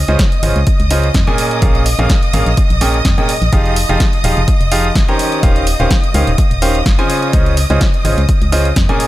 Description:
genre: piano house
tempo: 126 BPM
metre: 4/4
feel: swing 54% on 16ths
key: unclear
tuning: A4 = 440 Hz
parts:
  - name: rich studio violin section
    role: sustained chords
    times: 0.0-9.1 s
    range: Eb5 to Eb6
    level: -21 LUFS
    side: equal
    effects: sidechain pumping
  - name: organ-like FM bass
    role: bass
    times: 0.0-8.9 s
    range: Eb1 to F2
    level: -15 LUFS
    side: equal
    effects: sidechain pumping
  - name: bright concert grand piano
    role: riff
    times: 0.1-9.1 s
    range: Bb2 to Bb5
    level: -17 LUFS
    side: right 1 dB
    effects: sidechain pumping, dub echo
  - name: punchy analog drum machine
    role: drums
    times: 0.1-9.1 s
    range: hi-hat, snare drum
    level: -22 LUFS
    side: right 1 dB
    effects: overdrive
  - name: electronic kick drum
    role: drums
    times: 0.2-8.9 s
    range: none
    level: -14 LUFS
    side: equal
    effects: overdrive
room: digital ambience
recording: none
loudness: -11 LUFS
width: side -15 dB against mid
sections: 0.0-9.1 A section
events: none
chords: 0.0 Dbmaj9; 1.4 Bbm7; 3.5 Eb13; 7.1 Dbmaj9

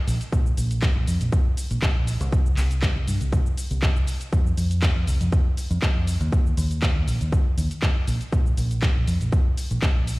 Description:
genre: filtered disco house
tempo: 120 BPM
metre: 4/4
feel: swing 54% on 16ths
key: unclear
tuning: A4 = 440 Hz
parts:
  - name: fingered electric bass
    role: bass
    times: 0.1-10.2 s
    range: Bb1 to G2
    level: -24 LUFS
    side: equal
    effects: sidechain pumping
  - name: punchy analog drum machine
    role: drums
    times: 0.1-10.2 s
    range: handclaps, hi-hat, shaker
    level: -32 LUFS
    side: equal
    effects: sidechain pumping on hats, sidechain pumping on perc
  - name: electronic kick drum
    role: drums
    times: 0.3-9.9 s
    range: none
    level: -21 LUFS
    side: equal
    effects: overdrive
room: digital ambience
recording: played on a big sound system in a bare room, stone room reverb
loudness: -20 LUFS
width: side -22 dB against mid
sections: 0.0-10.2 A section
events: none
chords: none

